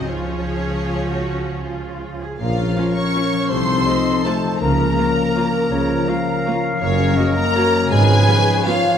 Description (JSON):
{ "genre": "classical", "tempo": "146-177 BPM", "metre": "3/4", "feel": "rubato", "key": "Bb minor", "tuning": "A4 = 440 Hz", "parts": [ { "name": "warm symphonic violin section", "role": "melody", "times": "0.0-9.0 s", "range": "Db5 to Db6", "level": "-25 LUFS", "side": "left 2 dB", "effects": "none" }, { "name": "dark symphonic violin section", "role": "second line", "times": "0.0-9.0 s", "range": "Db4 to Db5", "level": "-28 LUFS", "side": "left 2 dB", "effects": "none" }, { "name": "rich symphonic viola section", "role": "accompaniment", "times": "0.0-8.7 s", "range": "F3 to Gb4", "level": "-28 LUFS", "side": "right 2 dB", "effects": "none" }, { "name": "concert harp", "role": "arpeggios", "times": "0.0-9.0 s", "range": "Gb2 to Cb6", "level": "-24 LUFS", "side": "left 5 dB", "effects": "none" }, { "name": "warm chamber cello section", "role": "bass", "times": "0.0-8.2 s", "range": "Gb2 to Ab4", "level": "-29 LUFS", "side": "right 3 dB", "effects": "none" }, { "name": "warm symphonic double bass section", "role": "bass", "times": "0.0-8.2 s", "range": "Gb1 to Db2", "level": "-24 LUFS", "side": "right 3 dB", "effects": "none" }, { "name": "bright large flute ensemble", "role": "second line", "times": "2.4-9.0 s", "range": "Db5 to Db6", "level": "-26 LUFS", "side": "equal", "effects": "none" }, { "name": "mellow clarinet", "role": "second line", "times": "2.4-9.0 s", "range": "Bb4 to F5", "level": "-26 LUFS", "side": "left 1 dB", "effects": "none" }, { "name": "mellow French horn section", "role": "sustained chords", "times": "2.4-9.0 s", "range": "Db3 to Db4", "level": "-23 LUFS", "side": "left 5 dB", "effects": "none" }, { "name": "warm trombone section", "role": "sustained chords", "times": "2.4-8.8 s", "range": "F3 to Eb4", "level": "-28 LUFS", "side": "right 2 dB", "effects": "none" }, { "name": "clear trumpet", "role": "stabs", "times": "2.4-8.7 s", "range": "A4 to Cb5", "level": "-27 LUFS", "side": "right 2 dB", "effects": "none" }, { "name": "mellow tuba", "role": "bass", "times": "2.4-8.2 s", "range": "Gb1 to Db2", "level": "-28 LUFS", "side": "right 3 dB", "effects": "none" } ], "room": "wet scoring stage reverb, RT60 1.9 s", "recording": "none", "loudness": "-16 LUFS", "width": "side -8 dB against mid", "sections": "0.0-2.4 A section; 2.4-9.0 B section", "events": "none", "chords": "0.1 Db; 2.4 Bbm; 3.5 F7/C; 4.6 Bbm/Db; 6.8 Gb; 7.9 Db7/Ab", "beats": "| 0.08 0.47 0.87 | 1.24 1.62 2.02 | 2.40 2.77 3.15 | 3.51 3.88 4.26 | 4.62 4.98 5.36 | 5.72 6.09 6.47 | 6.83 7.19 7.57 | 7.92 8.28 8.66" }